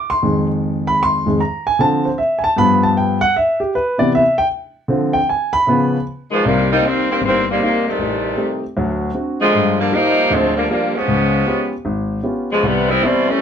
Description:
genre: jazz.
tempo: 155 BPM.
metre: 4/4.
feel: swing 64% on 8ths.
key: C minor.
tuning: A4 = 440 Hz.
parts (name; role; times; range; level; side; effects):
warm grand piano; accompaniment; 0.0-13.3 s; G1 to D6; -16 LUFS; equal; none.
dark saxophone section; melody; 6.3-13.4 s; Bb2 to E4; -15 LUFS; equal; none.
room: moderate studio reverb, RT60 0.6 s.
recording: band playing live in one room.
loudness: -14 LUFS.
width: side -8 dB against mid.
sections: 0.0-6.4 A section; 6.4-13.4 B section.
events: grand piano solo 0.0-6.4.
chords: 0.2 Fm7; 1.8 Dm7; 2.6 G7; 3.3 Cmaj7; 4.9 Dm7b5; 5.7 Db7; 6.4 Cm7; 8.0 Am7b5; 8.7 D7; 9.5 Gm7; 11.1 Db7#11; 12.6 Cmaj7.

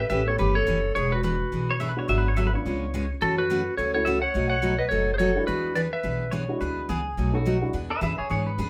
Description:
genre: country, western swing.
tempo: 212 BPM.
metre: 4/4.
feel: swing 59% on 8ths.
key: E mixolydian.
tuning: A4 = 440 Hz.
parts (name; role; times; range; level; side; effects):
clean lap steel guitar; melody; 0.0-6.3 s; A4 to F#5; -30 LUFS; equal; none.
clear clarinet; second line; 0.0-6.3 s; F#4 to C#5; -30 LUFS; equal; none.
upright bass; bass; 0.0-8.7 s; E1 to G#2; -31 LUFS; equal; none.
picked steel-string acoustic guitar; accompaniment; 0.1-8.7 s; B2 to G#4; -32 LUFS; equal; none.
dark upright piano; accompaniment; 0.3-7.7 s; G#3 to A4; -34 LUFS; equal; none.
pedal steel guitar; second line; 1.7-3.1, 6.3-8.7 s; F#4 to E5; -33 LUFS; equal; none.
room: wet small room reverb, RT60 0.5 s.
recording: band playing live in one room.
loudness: -25 LUFS.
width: mono.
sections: 0.0-7.7 A section.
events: none.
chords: 0.0 A9; 1.0 E9; 2.1 G#m7b5; 2.6 C#7b9; 3.2 F#m7; 4.3 B9; 5.5 E9; 7.2 B9; 7.7 E9.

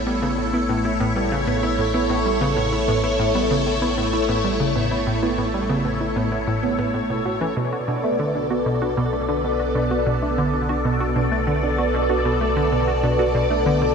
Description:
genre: ambient.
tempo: 96 BPM.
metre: 4/4.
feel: straight.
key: unclear.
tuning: A4 = 441 Hz.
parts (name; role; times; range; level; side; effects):
phased string machine; sustained chords; 0.0-13.9 s; A3 to D5; -22 LUFS; equal; ensemble chorus, phaser.
analog pluck; riff; 0.0-13.9 s; A2 to F#4; -24 LUFS; equal; chorus, tape echo.
warm sub bass; bass; 0.0-13.9 s; A1 to B1; -28 LUFS; equal; none.
wind-like tuned noise texture; texture; 0.0-13.9 s; A4; -36 LUFS; left 1 dB; none.
soft round pluck; arpeggios; 0.1-13.8 s; B2 to F#4; -28 LUFS; right 3 dB; chorus, auto-pan, tape echo.
room: wet huge ambient reverb, RT60 8.2 s.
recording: cassette tape.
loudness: -19 LUFS.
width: side -6 dB against mid.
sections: 0.0-13.9 A section.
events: none.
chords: 0.0 A; 7.6 Bm7.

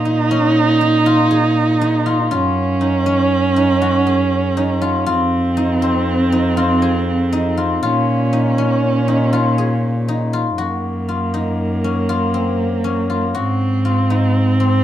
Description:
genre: contemporary instrumental, chamber music in an uneven meter.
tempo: 239 BPM (eighths).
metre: 11/8.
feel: straight.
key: Bb minor.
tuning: A4 = 441 Hz.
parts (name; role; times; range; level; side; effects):
warm viola; second line; 0.0-14.8 s; Bb3 to Eb4; -18 LUFS; right 4 dB; none.
guzheng; arpeggios; 0.0-14.8 s; C4 to Ab4; -21 LUFS; left 4 dB; none.
warm cello; bass; 0.0-14.8 s; F2 to Bb2; -19 LUFS; left 1 dB; none.
room: moderate studio reverb, RT60 0.8 s.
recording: dark, warm production.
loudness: -14 LUFS.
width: side -11 dB against mid.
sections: 0.0-10.6 A section; 10.6-14.8 B section.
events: none.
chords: 0.0 Bbm7; 2.3 Gbsus2; 5.1 Fm7; 7.8 Bbm7; 10.6 Gbmaj7; 13.3 Ab7.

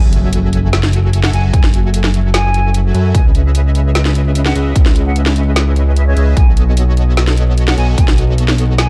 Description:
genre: future bass.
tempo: 149 BPM.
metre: 4/4.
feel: half-time.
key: C# minor.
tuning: A4 = 440 Hz.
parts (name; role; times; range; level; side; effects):
concert flute; melody; 0.0-8.9 s; C#5 to G#5; -28 LUFS; equal; sidechain pumping, tape echo.
soft supersaw; riff; 0.0-8.9 s; F#3 to G#5; -25 LUFS; equal; sidechain pumping.
fat analog bass; bass; 0.0-8.9 s; F#1 to F#2; -15 LUFS; equal; sidechain pumping.
impact; sound effects; 0.0-1.5 s; none; -24 LUFS; equal; none.
trap drum kit; drums; 0.1-8.9 s; hi-hat, snare drum; -21 LUFS; equal; none.
electronic kick drum; drums; 1.5-8.1 s; none; -13 LUFS; equal; none.
room: little or no reverb.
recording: dark, warm production.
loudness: -13 LUFS.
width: mono.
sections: 0.0-8.9 A section.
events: impact 0.0-1.5.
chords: 0.0 F#m7; 3.1 C#m7; 6.4 B7.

